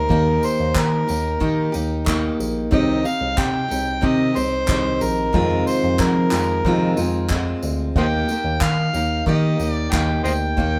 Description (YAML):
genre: acoustic pop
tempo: 92 BPM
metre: 4/4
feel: straight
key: Eb major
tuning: A4 = 442 Hz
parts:
  - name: overdriven harmonica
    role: melody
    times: 0.0-10.8 s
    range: Bb4 to G5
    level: -26 LUFS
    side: equal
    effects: tape echo
  - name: picked steel-string acoustic guitar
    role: accompaniment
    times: 0.0-10.8 s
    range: F2 to G4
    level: -24 LUFS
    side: equal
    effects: none
  - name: bell-like tine electric piano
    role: bass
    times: 0.0-10.8 s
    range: Bb1 to F3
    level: -26 LUFS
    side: equal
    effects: none
  - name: unplugged drum kit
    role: drums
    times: 0.1-10.7 s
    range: handclaps, kick drum, tambourine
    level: -28 LUFS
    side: equal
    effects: none
room: moderate studio ambience, RT60 0.5 s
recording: band playing live in one room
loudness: -20 LUFS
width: mono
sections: 0.0-10.8 A section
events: none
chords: 0.0 Eb; 2.7 Cm; 5.3 Fm7; 8.0 Eb